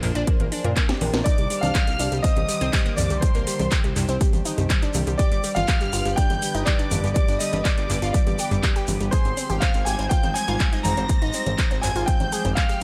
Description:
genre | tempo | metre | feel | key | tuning
progressive house | 122 BPM | 4/4 | straight | C minor | A4 = 440 Hz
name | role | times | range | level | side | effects
evolving wavetable pad | sustained chords | 0.0-12.8 s | D3 to C5 | -36 LUFS | equal | phaser, built-in reverb, sidechain pumping
analog pluck | arpeggios | 0.0-12.8 s | G3 to Ab4 | -31 LUFS | equal | chorus, sidechain pumping, tape echo
fat analog bass | bass | 0.0-12.5 s | G1 to Bb2 | -30 LUFS | equal | sidechain pumping
house drum kit | drums | 0.0-12.8 s | handclaps, hi-hat, snare drum | -31 LUFS | equal | sidechain pumping on hats, small room ambience
electronic toms and congas | percussion | 0.0-12.5 s | none | -31 LUFS | equal | sidechain pumping on perc, small room ambience, sidechain pumping on toms
electronic kick drum | drums | 0.3-12.7 s | none | -24 LUFS | equal | small room ambience
clear grand piano | melody | 1.2-12.8 s | C5 to Bb5 | -31 LUFS | equal | sidechain pumping, tape echo
warm studio violin section | second line | 1.2-12.8 s | C6 to Bb6 | -35 LUFS | equal | sidechain pumping
tube shaker | percussion | 1.3-12.8 s | none | -37 LUFS | equal | none
room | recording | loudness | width
digital ambience | none | -22 LUFS | mono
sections
0.0-12.8 A section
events
drum fill 0.9-1.3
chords
0.0 Bb7; 1.3 Cmadd9; 5.2 G; 9.1 Fmadd9/Ab

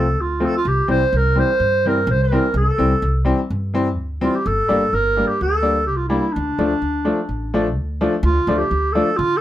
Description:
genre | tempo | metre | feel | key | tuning
klezmer | 126 BPM | 4/4 | straight | D minor | A4 = 439 Hz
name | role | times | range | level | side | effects
warm clarinet | melody | 0.0-9.4 s | D4 to C5 | -19 LUFS | right 1 dB | plate reverb
clear upright piano | accompaniment | 0.0-9.1 s | E3 to D4 | -20 LUFS | left 2 dB | none
upright bass | bass | 0.0-9.4 s | G1 to D3 | -21 LUFS | equal | none
room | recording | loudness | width
moderate studio reverb, RT60 0.5 s | none | -16 LUFS | side -12 dB against mid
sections
0.0-8.2 A section; 8.2-9.4 B section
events
none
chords
0.0 F; 0.6 C; 4.5 Gm; 6.4 Dm

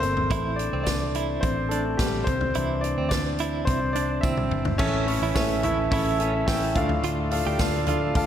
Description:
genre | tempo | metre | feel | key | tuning
piano-driven pop | 107 BPM | 4/4 | straight | unclear | A4 = 440 Hz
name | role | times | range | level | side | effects
warm concert grand piano | accompaniment | 0.0-8.3 s | A2 to G5 | -25 LUFS | left 1 dB | none
vintage muted fingered electric bass | bass | 0.0-8.3 s | G1 to D2 | -29 LUFS | equal | none
natural country drum kit | drums | 0.0-8.3 s | crash cymbal, hi-hat, kick drum, snare drum, toms | -28 LUFS | equal | none
direct-recorded clean electric guitar | riff | 0.3-8.1 s | C4 to G4 | -33 LUFS | right 8 dB | tremolo
tambourine | percussion | 0.9-7.7 s | none | -44 LUFS | right 6 dB | none
overdriven tonewheel organ | sustained chords | 4.8-8.3 s | C#3 to A4 | -36 LUFS | right 2 dB | none
room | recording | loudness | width
moderate lush hall reverb, RT60 1.8 s, studio ambience | big arena sound | -22 LUFS | side -10 dB against mid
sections
0.0-4.8 A section; 4.8-8.3 B section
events
grand piano solo 0.0-4.8; drum fill 4.2-4.8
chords
0.3 Am; 2.3 Cadd9; 4.8 A; 6.8 Dm

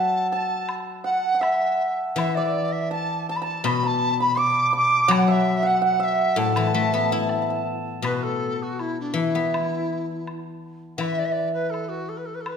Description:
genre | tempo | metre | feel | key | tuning
chinese traditional, Chinese chamber ensemble | 82 BPM | 2/4 | rubato | A zhi mode | A4 = 440 Hz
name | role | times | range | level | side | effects
large dizi | melody | 0.0-12.6 s | D4 to D6 | -25 LUFS | equal | none
hammered dulcimer | second line | 0.0-9.4 s | D5 to D6 | -25 LUFS | right 3 dB | none
guzheng | accompaniment | 0.0-12.6 s | A2 to E4 | -25 LUFS | left 3 dB | none
woodblock | percussion | 0.7-12.6 s | none | -35 LUFS | left 2 dB | none
room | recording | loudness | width
wet recital hall reverb, RT60 1.7 s | none | -20 LUFS | side -7 dB against mid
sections
0.0-8.0 A section; 8.0-12.6 B section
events
none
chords
none

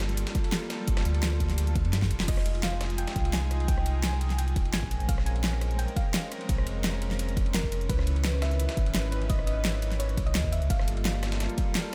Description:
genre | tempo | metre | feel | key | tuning
liquid drum and bass | 171 BPM | 4/4 | straight | unclear | A4 = 441 Hz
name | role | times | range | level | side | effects
warm studio string section | sustained chords | 0.0-11.9 s | Eb3 to Cb5 | -39 LUFS | equal | sidechain pumping
sub bass with octave | bass | 0.0-11.5 s | Eb1 to G2 | -31 LUFS | equal | none
dusty soul sampler-style drum kit | drums | 0.0-11.8 s | hi-hat, ride cymbal, snare drum | -42 LUFS | equal | high-pass filter on cymbals, high-pass filter on snare, high-pass filter on hats
pop drum kit | drums | 0.0-11.8 s | crash cymbal, hi-hat, rim click, snare drum | -36 LUFS | equal | none
electronic kick drum | drums | 0.3-11.7 s | none | -31 LUFS | equal | none
soft round pluck | melody | 2.3-11.9 s | Bb4 to Ab5 | -41 LUFS | equal | subtle chorus, vintage 12-bit sampler grit, tape echo
room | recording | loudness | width
light reverb, digital ambience | none | -28 LUFS | mono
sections
0.0-11.9 A section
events
drum fill 1.9-2.3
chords
0.0 Gm9; 2.3 Fm9; 4.9 Bbm9; 7.9 Dbm9; 10.7 Gm9

